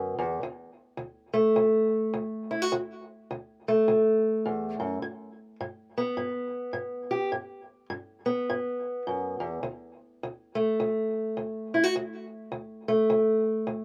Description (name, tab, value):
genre	blues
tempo	104 BPM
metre	4/4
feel	swing 61% on 8ths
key	D major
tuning	A4 = 439 Hz
part	fingerpicked steel-string acoustic guitar	solo	0.0-13.8 s	D2 to G4	-28 LUFS	equal	none
room	little or no reverb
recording	recorded outdoors, with no room sound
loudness	-28 LUFS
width	mono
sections	0.0-13.8 A section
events	none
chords	0.4 D5; 5.0 G; 9.6 D5